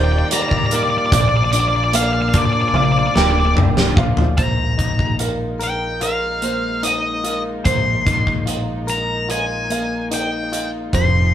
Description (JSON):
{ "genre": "post-rock", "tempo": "74 BPM", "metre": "4/4", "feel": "straight", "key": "unclear", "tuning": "A4 = 440 Hz", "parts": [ { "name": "octave-fuzz lead guitar", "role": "melody", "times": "0.0-11.3 s", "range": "D5 to C6", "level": "-21 LUFS", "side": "left 2 dB", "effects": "distortion" }, { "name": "rich studio string section", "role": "sustained chords", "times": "0.0-11.3 s", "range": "Eb3 to D5", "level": "-29 LUFS", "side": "right 1 dB", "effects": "none" }, { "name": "direct-recorded clean electric guitar", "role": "arpeggios", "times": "0.0-11.3 s", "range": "F2 to Bb4", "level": "-24 LUFS", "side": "left 2 dB", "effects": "analog delay" }, { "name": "felt-muted upright piano", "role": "arpeggios", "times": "0.0-11.3 s", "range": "Bb4 to G5", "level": "-27 LUFS", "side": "right 6 dB", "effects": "none" }, { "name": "picked electric bass", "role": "bass", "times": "0.0-11.3 s", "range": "C1 to Bb1", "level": "-23 LUFS", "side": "equal", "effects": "none" }, { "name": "big rock drum kit", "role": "drums", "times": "0.3-11.1 s", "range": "hi-hat, kick drum, snare drum, toms", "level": "-19 LUFS", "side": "equal", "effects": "none" } ], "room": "moderate studio reverb, RT60 0.6 s", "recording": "band playing live in one room", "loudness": "-16 LUFS", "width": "side -10 dB against mid", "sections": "0.0-4.4 A section; 4.4-11.3 B section", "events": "drum fill 2.8-4.4", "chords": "0.0 Ebmaj7; 1.1 Bb7; 4.4 Bb7sus4", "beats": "0.31 | 1.13 1.94 2.76 3.57 | 4.39 5.21 6.02 6.84 | 7.66 8.47 9.29 10.11 | 10.92" }